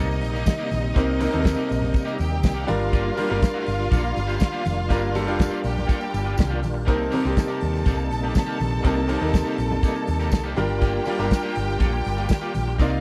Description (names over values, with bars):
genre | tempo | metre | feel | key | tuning
disco | 122 BPM | 4/4 | straight | C dorian | A4 = 444 Hz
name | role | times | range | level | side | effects
bright studio string section | second line | 0.0-13.0 s | Eb4 to A5 | -33 LUFS | equal | none
bright baby grand piano | accompaniment | 0.0-13.0 s | C3 to D5 | -30 LUFS | equal | none
electric guitar at the edge of break-up | accompaniment | 0.0-13.0 s | Bb3 to D5 | -35 LUFS | equal | spring reverb
percussive tonewheel organ | sustained chords | 0.0-13.0 s | C3 to Bb4 | -34 LUFS | equal | overdrive, chorus vibrato, fast rotary speaker
hollow-body short-scale fingered electric bass | bass | 0.0-13.0 s | F1 to Eb2 | -28 LUFS | equal | none
tambourine | percussion | 0.0-12.9 s | none | -50 LUFS | equal | none
warm soul drum kit | drums | 0.2-12.9 s | hi-hat, kick drum, snare drum | -23 LUFS | equal | none
congas | percussion | 0.2-12.9 s | none | -35 LUFS | equal | none
room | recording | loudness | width
little or no reverb | dry, close 1970s-style studio recording | -23 LUFS | mono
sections
0.0-13.0 A section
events
none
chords
0.0 Cm7; 2.7 Gm7; 6.9 Cm7; 10.6 Gm7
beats
0.47 | 0.96 1.45 1.95 2.44 | 2.93 3.43 3.92 4.41 | 4.91 5.40 5.89 6.39 | 6.88 7.37 7.87 8.36 | 8.85 9.35 9.84 10.33 | 10.82 11.32 11.81 12.30 | 12.79